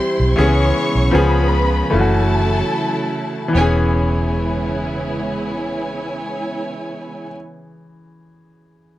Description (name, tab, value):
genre	lush 1970s-style soul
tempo	71-81 BPM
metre	4/4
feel	straight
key	E major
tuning	A4 = 440 Hz
part	warm studio string section	second line	0.0-7.3 s	E4 to C#6	-24 LUFS	equal	none
part	bright grand piano	accompaniment	0.0-9.0 s	E3 to G#4	-20 LUFS	left 2 dB	none
part	warm studio string section	sustained chords	0.0-7.3 s	C#3 to E#4	-26 LUFS	right 2 dB	none
part	vintage muted fingered electric bass	bass	0.2-7.3 s	E1 to C#2	-18 LUFS	equal	none
room	small room ambience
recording	dry, close 1970s-style studio recording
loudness	-16 LUFS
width	side -14 dB against mid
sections	0.0-3.5 A section; 3.5-6.9 B section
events	slowing down 0.0-3.5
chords	0.4 C#m7; 1.1 C#7; 1.9 F#m7; 3.5 E6